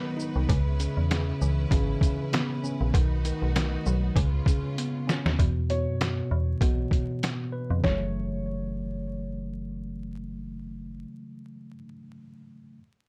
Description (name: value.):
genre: hip hop, boom-bap hip-hop.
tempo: 98 BPM.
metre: 4/4.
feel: swing 55% on 16ths.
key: F# dorian.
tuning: A4 = 441 Hz.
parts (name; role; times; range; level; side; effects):
tine electric piano; accompaniment; 0.0-12.8 s; B2 to B4; -34 LUFS; equal; overdrive, cassette tape, low-pass filter.
warm studio string section; sustained chords; 0.0-5.4 s; G#3 to B4; -41 LUFS; equal; none.
trip hop sampler-style drum kit; drums; 0.2-8.0 s; hi-hat, kick drum, shaker, snare drum; -28 LUFS; equal; vintage 12-bit sampler grit.
metallic FM bass; bass; 0.4-11.0 s; F#1 to F#2; -31 LUFS; equal; none.
dark upright piano; melody; 5.7-9.6 s; C#5; -39 LUFS; equal; low-pass filter, digital delay.
room: little or no reverb.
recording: vinyl crackle.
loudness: -27 LUFS.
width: mono.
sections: 0.0-5.4 A section; 5.4-7.8 B section; 7.8-10.3 C section.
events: drum fill 4.8-5.4; filter sweep 5.4-7.8.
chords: 0.5 C#m7; 2.9 B7; 4.2 C#7; 5.4 E5; 7.8 F#m7.